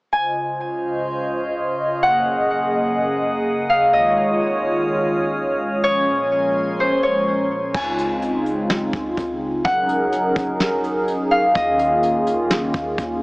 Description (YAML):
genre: hip hop, atmospheric cloud-rap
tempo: 126 BPM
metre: 4/4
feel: half-time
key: unclear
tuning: A4 = 440 Hz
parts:
  - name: Celtic harp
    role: melody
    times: 0.1-13.2 s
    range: C5 to Ab5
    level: -20 LUFS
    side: equal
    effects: digital delay
  - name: hollow soft pad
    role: sustained chords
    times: 0.1-13.2 s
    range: Db2 to Eb5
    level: -21 LUFS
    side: equal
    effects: chorus, sidechain pumping
  - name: drifting glass-harmonics texture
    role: texture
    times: 0.6-7.7 s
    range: Bb3 to C6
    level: -27 LUFS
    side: equal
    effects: chorus, built-in reverb
  - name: soft 808-style bass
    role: bass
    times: 7.7-13.2 s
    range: Gb1 to Eb2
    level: -38 LUFS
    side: equal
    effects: none
  - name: soft brush drum kit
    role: drums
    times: 7.7-13.1 s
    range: crash cymbal, hi-hat, kick drum, snare drum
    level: -25 LUFS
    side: equal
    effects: none
room: light reverb, studio reverb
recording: small speaker sound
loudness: -17 LUFS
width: side -24 dB against mid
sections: 0.1-7.7 A section; 7.7-13.2 B section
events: none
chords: 0.1 Dbmaj9; 2.0 Gb69; 3.9 Eb9sus4; 5.8 Bbm9; 7.7 Dbmaj9; 9.6 Gb69; 11.6 Eb9sus4